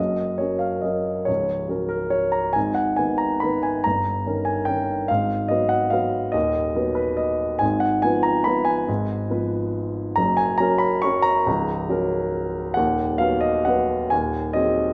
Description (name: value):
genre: classical, piano waltz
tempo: 126-150 BPM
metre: 3/4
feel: rubato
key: F# major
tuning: A4 = 440 Hz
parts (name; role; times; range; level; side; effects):
- warm grand piano; solo; 0.0-14.9 s; C#1 to C#6; -22 LUFS; equal; none
room: wet recital hall reverb, RT60 1.5 s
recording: none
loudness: -22 LUFS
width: mono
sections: 0.0-14.9 A section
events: none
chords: 0.0 F#; 2.6 G#m; 3.8 D#7/G; 5.1 G#m7; 7.6 Fdim/Ab; 10.2 F#; 12.8 B/D#; 14.1 G#7/D#